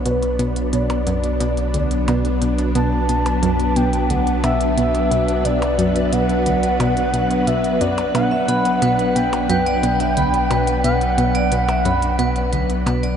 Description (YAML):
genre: ambient, sequencer-driven space music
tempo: 89 BPM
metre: 4/4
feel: straight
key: B minor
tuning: A4 = 439 Hz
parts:
  - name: string machine, full ensemble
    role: sustained chords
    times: 0.0-13.2 s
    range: F#3 to B4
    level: -21 LUFS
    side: left 1 dB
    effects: ensemble chorus, shimmer reverb
  - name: warm sub bass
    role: bass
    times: 0.0-13.2 s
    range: B1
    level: -23 LUFS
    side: equal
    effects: none
  - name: expressive synth lead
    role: melody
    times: 0.1-12.8 s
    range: B4 to A5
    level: -22 LUFS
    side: equal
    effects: chorus, shimmer reverb, tape echo
  - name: analog pluck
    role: riff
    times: 0.1-13.0 s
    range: D2 to B2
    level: -23 LUFS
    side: equal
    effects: chorus, shimmer reverb, tape echo
  - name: electronic hi-hat and percussion blips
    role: percussion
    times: 0.1-13.2 s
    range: none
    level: -31 LUFS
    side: equal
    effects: none
  - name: vibraphone with hard mallets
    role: arpeggios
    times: 8.3-13.2 s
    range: B4 to B5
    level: -24 LUFS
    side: right 3 dB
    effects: auto-pan, shimmer reverb, tape echo
room: wet huge ambient reverb, RT60 7.3 s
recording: in a vast, echoing space, nothing above 11.0 kHz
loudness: -16 LUFS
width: side -8 dB against mid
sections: 0.0-13.2 A section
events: fade-out 11.7-13.2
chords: 0.0 Bm